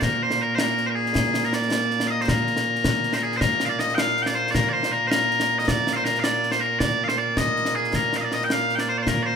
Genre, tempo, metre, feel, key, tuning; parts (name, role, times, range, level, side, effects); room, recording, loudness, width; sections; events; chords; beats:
scottish traditional, Scottish pipe music; 106 BPM (dotted quarters); 6/8; straight; Bb mixolydian; A4 = 440 Hz
loud bright bagpipes; melody; 0.0-9.4 s; Bb2 to G5; -21 LUFS; equal
concert snare drum and concert bass drum; drums; 0.0-9.2 s; -26 LUFS; left 1 dB
light reverb; minimal, uncompressed stereo recording; -20 LUFS; side -6 dB against mid
0.0-3.4 A section; 3.4-9.4 A section
| 0.01 0.58 | 1.15 1.71 | 2.28 2.85 | 3.41 3.98 | 4.54 5.11 | 5.67 6.24 | 6.81 7.37 | 7.94 8.51 | 9.07